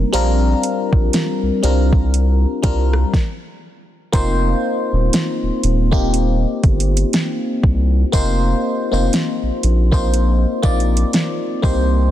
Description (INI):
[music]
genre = contemporary R&B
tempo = 60 BPM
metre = 4/4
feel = swing 58% on 16ths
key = unclear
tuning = A4 = 440 Hz
[part]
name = FM electric piano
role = accompaniment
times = 0.0-12.1 s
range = G3 to D5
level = -20 LUFS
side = left 2 dB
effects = chorus, phaser
[part]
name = saturated sub bass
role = bass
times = 0.0-12.1 s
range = Eb1 to C2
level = -16 LUFS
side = equal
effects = none
[part]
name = smooth R&B drum kit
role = drums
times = 0.1-11.9 s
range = hi-hat, kick drum, rim click, snare drum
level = -18 LUFS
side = equal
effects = overdrive
[sound]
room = little or no reverb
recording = dense, heavily limited modern master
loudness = -15 LUFS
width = side -12 dB against mid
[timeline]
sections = 0.0-4.1 A section; 4.1-12.1 B section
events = stop 3.1-4.1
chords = 0.1 Bb69; 4.1 F7sus4